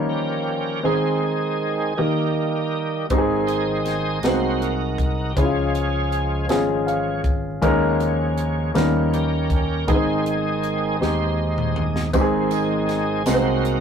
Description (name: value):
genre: slow gospel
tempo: 53 BPM (dotted quarters)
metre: 6/8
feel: straight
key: Ab major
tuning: A4 = 440 Hz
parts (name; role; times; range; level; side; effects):
- warm grand piano; accompaniment; 0.0-13.8 s; Ab2 to F5; -22 LUFS; left 1 dB; none
- bright tonewheel organ; sustained chords; 0.0-13.8 s; Eb3 to Eb5; -25 LUFS; right 3 dB; slow rotary speaker, overdrive, chorus vibrato
- fingered electric bass; bass; 3.1-13.8 s; Ab1 to Eb2; -26 LUFS; equal; none
- crisp fusion drum kit; drums; 3.1-13.8 s; hi-hat, kick drum, snare drum, toms; -25 LUFS; equal; none
- tambourine; percussion; 12.1-13.6 s; none; -39 LUFS; right 5 dB; none
room: moderate studio reverb, RT60 0.5 s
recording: rough rehearsal-room recording, tube saturation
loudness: -19 LUFS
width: side -7 dB against mid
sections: 0.0-12.1 A section; 12.1-13.8 A section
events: tonewheel organ solo 0.0-12.1, 12.1-13.8; grand piano fill 6.5-7.6; drum fill 11.0-12.1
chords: 0.0 Eb7; 0.8 Ab/Eb; 2.0 Eb; 3.1 Ab; 4.2 Ab7/C; 5.4 Db; 7.6 Eb7sus4; 8.8 Eb7; 9.9 Ab; 13.3 Ab7/C